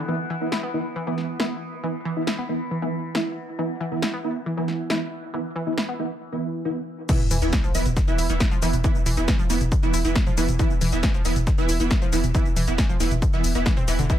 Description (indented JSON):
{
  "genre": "driving peak-time techno",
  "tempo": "137 BPM",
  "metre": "4/4",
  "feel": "straight",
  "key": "unclear",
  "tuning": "A4 = 442 Hz",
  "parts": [
    { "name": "overtone-sweeping drone", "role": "drone", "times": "0.0-6.2 s", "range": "E3 to B3", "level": "-37 LUFS", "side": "left 2 dB", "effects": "chorus, built-in reverb, phaser, sidechain pumping" },
    { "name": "analog pluck", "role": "riff", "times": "0.1-14.1 s", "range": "D3 to E4", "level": "-31 LUFS", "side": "left 1 dB", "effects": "chorus, tube saturation, sidechain pumping, tape echo" },
    { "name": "rave stab", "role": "stabs", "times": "0.1-14.2 s", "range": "E3 to E4", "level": "-27 LUFS", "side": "right 2 dB", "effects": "chorus, built-in reverb, sidechain pumping, dub echo" },
    { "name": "techno drum kit", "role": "drums", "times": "0.5-14.2 s", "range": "crash cymbal, hi-hat, shaker, snare drum, toms", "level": "-27 LUFS", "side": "equal", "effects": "overdrive, small room ambience, sidechain pumping on hats, sidechain pumping on cymbals, sidechain pumping on perc, sidechain pumping on toms" },
    { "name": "electronic kick drum", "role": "drums", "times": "7.1-14.2 s", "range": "none", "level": "-22 LUFS", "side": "equal", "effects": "overdrive, small room ambience" },
    { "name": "sub drop", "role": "sound effects", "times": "7.1-8.8 s", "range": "none", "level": "-32 LUFS", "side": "left 2 dB", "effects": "none" },
    { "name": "warm sub bass", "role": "bass", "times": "7.2-14.1 s", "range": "E1", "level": "-26 LUFS", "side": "equal", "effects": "sidechain pumping, low-pass filter" }
  ],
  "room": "digital ambience",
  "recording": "none",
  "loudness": "-21 LUFS",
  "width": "side -11 dB against mid",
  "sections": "0.0-7.1 A section; 7.1-14.2 B section",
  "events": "break 6.2-7.1; drop 7.1-14.2; impact 7.1-8.8",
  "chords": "0.0 E5"
}